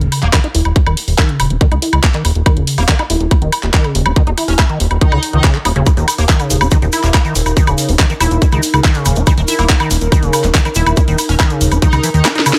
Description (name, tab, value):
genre	psychedelic trance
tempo	141 BPM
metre	4/4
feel	straight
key	unclear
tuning	A4 = 440 Hz
part	liquid acid bass	riff	0.0-12.5 s	Db3 to Fb4	-21 LUFS	equal	chorus, sidechain pumping, dub echo
part	fat analog bass	bass	0.0-12.2 s	Eb1 to Eb2	-17 LUFS	equal	none
part	garage drum kit	drums	0.0-12.6 s	handclaps, hi-hat, snare drum, woodblock	-19 LUFS	equal	overdrive, small room ambience
part	metallic wobble bass	second line	0.2-12.2 s	Bb3 to Eb4	-28 LUFS	equal	analog chorus, sidechain pumping, high-pass filter, tape echo
part	electronic kick drum	drums	0.3-11.9 s	none	-14 LUFS	equal	overdrive, small room ambience
part	pulsing gated texture	sustained chords	5.9-12.6 s	Eb4 to Bb4	-25 LUFS	equal	chorus, built-in reverb, sidechain pumping
part	egg shaker	percussion	5.9-12.5 s	none	-27 LUFS	equal	none
room	little or no reverb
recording	none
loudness	-13 LUFS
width	mono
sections	0.0-12.6 A section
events	filter sweep on acid bass 0.0-12.6; drum fill 12.2-12.6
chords	0.0 Eb5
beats	0.33 | 0.76 1.18 1.61 2.04 | 2.46 2.89 3.31 3.74 | 4.16 4.59 5.01 5.44 | 5.87 6.29 6.72 7.14 | 7.57 7.99 8.42 8.84 | 9.27 9.70 10.12 10.55 | 10.97 11.40 11.82 12.25